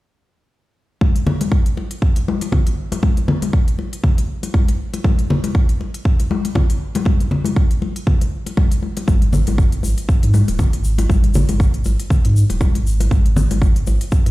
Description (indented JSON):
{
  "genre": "afro house",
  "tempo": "119 BPM",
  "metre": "4/4",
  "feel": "swing 56% on 16ths",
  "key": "unclear",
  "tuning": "A4 = 438 Hz",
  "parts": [
    { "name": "electronic kick drum", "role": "drums", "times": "1.0-14.2 s", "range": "none", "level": "-15 LUFS", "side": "equal", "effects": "none" },
    { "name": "congas", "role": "percussion", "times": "1.0-14.3 s", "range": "none", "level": "-22 LUFS", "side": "left 3 dB", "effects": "none" },
    { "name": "electronic hi-hat", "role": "drums", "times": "1.2-14.3 s", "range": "none", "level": "-35 LUFS", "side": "left 2 dB", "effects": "none" },
    { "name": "warm sub bass", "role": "bass", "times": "9.1-14.3 s", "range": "D#1 to G#2", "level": "-17 LUFS", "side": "equal", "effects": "sidechain pumping" },
    { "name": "tube shaker", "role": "percussion", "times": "9.1-14.2 s", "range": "none", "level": "-35 LUFS", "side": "left 4 dB", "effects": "none" }
  ],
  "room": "small room ambience",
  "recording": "played on a big sound system in a bare room, large studio reverb",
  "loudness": "-15 LUFS",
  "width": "side -18 dB against mid",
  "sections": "1.0-14.3 A section",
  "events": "none",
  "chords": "none"
}